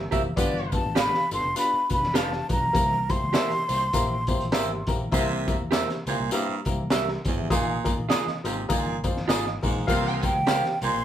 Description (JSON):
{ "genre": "uptempo 1960s-style soul", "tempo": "101 BPM", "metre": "4/4", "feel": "swing 58% on 8ths", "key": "unclear", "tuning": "A4 = 440 Hz", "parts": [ { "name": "fingered electric bass", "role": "bass", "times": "0.0-11.0 s", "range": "F1 to E2", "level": "-33 LUFS", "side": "left 1 dB", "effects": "none" }, { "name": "dark upright piano", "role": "accompaniment", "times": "0.1-11.0 s", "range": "Bb3 to E5", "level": "-31 LUFS", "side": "left 3 dB", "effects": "none" }, { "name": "electric guitar through a small old amp", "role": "stabs", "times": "0.1-10.6 s", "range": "F4 to F5", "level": "-27 LUFS", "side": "right 5 dB", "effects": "none" }, { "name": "crunchy breakbeat drum kit", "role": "drums", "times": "0.1-10.9 s", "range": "hi-hat, kick drum, snare drum", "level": "-27 LUFS", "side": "equal", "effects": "none" }, { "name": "tambourine", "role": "percussion", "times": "0.1-10.9 s", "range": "none", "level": "-38 LUFS", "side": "left 5 dB", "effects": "none" }, { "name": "clear horn section", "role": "second line", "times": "0.4-0.8, 5.1-5.6, 9.9-10.3 s", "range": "B3 to F5", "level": "-30 LUFS", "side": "left 1 dB", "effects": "none" }, { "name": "breathy mellow silver concert flute", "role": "melody", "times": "0.7-4.9, 10.2-11.0 s", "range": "G5 to C6", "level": "-25 LUFS", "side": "equal", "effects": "none" }, { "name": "raspy baritone saxophone", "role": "riff", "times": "5.1-11.0 s", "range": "E2 to C3", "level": "-30 LUFS", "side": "right 5 dB", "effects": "none" } ], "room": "moderate studio reverb, RT60 0.5 s", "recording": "band playing live in one room", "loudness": "-22 LUFS", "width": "side -10 dB against mid", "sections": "0.0-11.0 A section", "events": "none", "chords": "0.4 G7; 2.7 C7; 7.5 Bb7sus4; 9.9 C7sus4" }